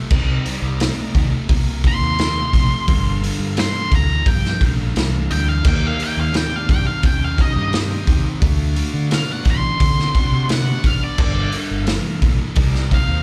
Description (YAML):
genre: blues rock power trio and southern rock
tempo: 87 BPM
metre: 4/4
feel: straight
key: G minor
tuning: A4 = 440 Hz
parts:
  - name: fuzz guitar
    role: riff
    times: 0.0-13.2 s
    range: G2 to C#4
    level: -28 LUFS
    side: equal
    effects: distortion, slapback echo
  - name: overdriven tonewheel organ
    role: sustained chords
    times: 0.1-13.2 s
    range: Eb4 to Bb5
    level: -37 LUFS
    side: equal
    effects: slow rotary speaker, plate reverb
  - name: fuzz fingered electric bass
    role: bass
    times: 0.1-13.2 s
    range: G1 to D3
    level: -24 LUFS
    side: equal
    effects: overdrive
  - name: raw garage drum kit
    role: drums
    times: 0.1-13.1 s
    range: crash cymbal, hi-hat, kick drum, snare drum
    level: -21 LUFS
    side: equal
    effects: none
  - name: octave-fuzz lead guitar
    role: melody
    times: 1.9-13.2 s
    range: D5 to C6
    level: -26 LUFS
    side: equal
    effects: distortion
room: little or no reverb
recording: live gig heard through the venue's PA, club reverb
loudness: -18 LUFS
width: mono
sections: 0.0-13.2 A section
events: lead electric guitar solo 0.0-13.2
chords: 0.0 Cm7; 2.9 Gm7; 5.7 Ebmaj7; 8.4 D7#9; 11.2 Gm7; 12.6 Cm7